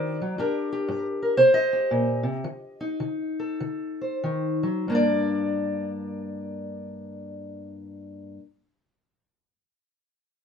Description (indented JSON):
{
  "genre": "acoustic country blues, solo or duo",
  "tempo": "88-119 BPM",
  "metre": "4/4",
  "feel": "swing 64% on 8ths",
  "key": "G harmonic minor",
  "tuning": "A4 = 444 Hz",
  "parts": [
    { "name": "fingerpicked steel-string acoustic guitar", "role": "solo", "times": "0.0-8.4 s", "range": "G2 to Eb5", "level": "-24 LUFS", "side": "left 1 dB", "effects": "none" }
  ],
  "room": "light reverb",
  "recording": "minimal, uncompressed stereo recording",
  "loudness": "-23 LUFS",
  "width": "side -7 dB against mid",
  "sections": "0.0-4.9 A section; 4.9-10.3 B section",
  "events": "slowing down 0.4-4.9",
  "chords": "0.4 Gm; 1.4 Cm; 2.5 D7(no3); 4.9 Gm",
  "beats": "| 0.37 0.88 1.39 1.92 | 2.46 3.02 3.61 4.23 | 4.89 5.57 6.25 6.93 | 7.61 8.29"
}